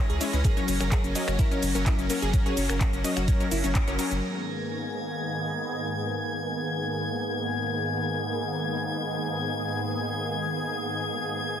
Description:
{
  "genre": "progressive house",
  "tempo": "127 BPM",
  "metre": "4/4",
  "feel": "straight",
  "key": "G# minor",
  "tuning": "A4 = 441 Hz",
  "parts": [
    { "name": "filtered supersaw swell", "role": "sustained chords", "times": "0.0-11.6 s", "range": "G#2 to G#4", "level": "-30 LUFS", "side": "right 1 dB", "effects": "sidechain pumping, low-pass filter" },
    { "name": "glassy wavetable pluck", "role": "arpeggios", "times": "0.0-4.2 s", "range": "C#4 to G#4", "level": "-33 LUFS", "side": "left 3 dB", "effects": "chorus, sidechain pumping, dub echo" },
    { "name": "wide unison pluck", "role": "stabs", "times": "0.0-4.2 s", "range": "F#3 to D#5", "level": "-31 LUFS", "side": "left 2 dB", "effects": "sidechain pumping, dub echo" },
    { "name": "drifting glass-harmonics texture", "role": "texture", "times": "0.0-11.6 s", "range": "G#6 to A#6", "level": "-34 LUFS", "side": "left 4 dB", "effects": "chorus, built-in reverb, sidechain pumping" },
    { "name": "saturated sub bass", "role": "bass", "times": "0.1-4.2 s", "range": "F#1 to C#2", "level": "-29 LUFS", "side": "equal", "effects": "sidechain pumping" },
    { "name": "pop drum kit", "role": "drums", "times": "0.1-4.2 s", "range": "cabasa, finger snaps, handclaps, hi-hat, ride cymbal", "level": "-34 LUFS", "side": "right 1 dB", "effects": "sidechain pumping on hats, sidechain pumping on perc, sidechain pumping on cymbals" },
    { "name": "electronic kick drum", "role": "drums", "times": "0.4-3.9 s", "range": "none", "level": "-24 LUFS", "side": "equal", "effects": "none" }
  ],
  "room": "light reverb",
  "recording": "dense, heavily limited modern master",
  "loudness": "-25 LUFS",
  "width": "side -9 dB against mid",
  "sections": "0.0-4.2 A section; 4.2-11.6 B section",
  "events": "drop 0.0-4.2; band accent 3.8; filter sweep on supersaw synth 4.2-11.6",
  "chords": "0.4 F#; 4.2 G#madd9"
}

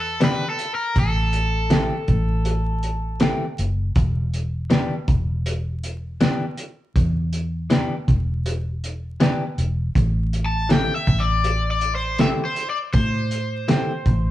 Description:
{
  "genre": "straight-eighth soul blues",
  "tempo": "80 BPM",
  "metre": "4/4",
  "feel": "straight",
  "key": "E minor",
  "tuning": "A4 = 441 Hz",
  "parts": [
    { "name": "cranked stack guitar", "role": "melody", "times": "0.0-3.2, 10.5-14.3 s", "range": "A4 to A5", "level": "-25 LUFS", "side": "left 2 dB", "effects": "overdrive, spring reverb" },
    { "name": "vintage muted fingered electric bass", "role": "bass", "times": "0.0-14.3 s", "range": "E1 to A2", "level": "-23 LUFS", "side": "equal", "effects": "none" },
    { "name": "direct-recorded clean electric guitar", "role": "stabs", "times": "0.2-13.9 s", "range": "E3 to G4", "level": "-25 LUFS", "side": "left 2 dB", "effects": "none" },
    { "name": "cloth-damped thuddy drum kit", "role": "drums", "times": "0.2-14.2 s", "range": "hi-hat, kick drum, snare drum", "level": "-21 LUFS", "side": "equal", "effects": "none" }
  ],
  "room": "moderate studio reverb, RT60 0.7 s",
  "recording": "band playing live in one room, vinyl crackle",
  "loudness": "-19 LUFS",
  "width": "side -14 dB against mid",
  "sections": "0.0-14.3 A section",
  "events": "none",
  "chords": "0.0 Em7; 1.0 Am7; 4.0 Em7; 9.9 Am7"
}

